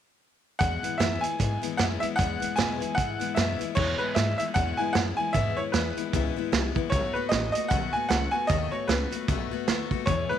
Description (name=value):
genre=rockabilly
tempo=152 BPM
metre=4/4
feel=swing 59% on 8ths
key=E major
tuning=A4 = 440 Hz
part: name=bright upright piano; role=melody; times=0.6-10.4 s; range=B4 to G#5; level=-28 LUFS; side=right 1 dB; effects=none
part: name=picked steel-string acoustic guitar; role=accompaniment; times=0.6-10.4 s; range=E2 to F#4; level=-32 LUFS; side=left 12 dB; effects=none
part: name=upright bass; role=bass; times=0.6-10.3 s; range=A1 to B2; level=-30 LUFS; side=equal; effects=none
part: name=vintage drum kit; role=drums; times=0.6-10.2 s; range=crash cymbal, hi-hat, kick drum, snare drum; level=-29 LUFS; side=right 4 dB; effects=none
room=light reverb, studio reverb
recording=1960s-style stereo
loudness=-24 LUFS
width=side -10 dB against mid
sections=0.6-3.8 A section; 3.8-10.4 B section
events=none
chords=0.6 E; 6.9 B7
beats=| 0.61 1.00 1.40 1.79 | 2.19 2.58 2.98 3.37 | 3.77 4.16 4.56 4.95 | 5.34 5.74 6.13 6.53 | 6.92 7.31 7.71 8.10 | 8.49 8.89 9.28 9.68 | 10.07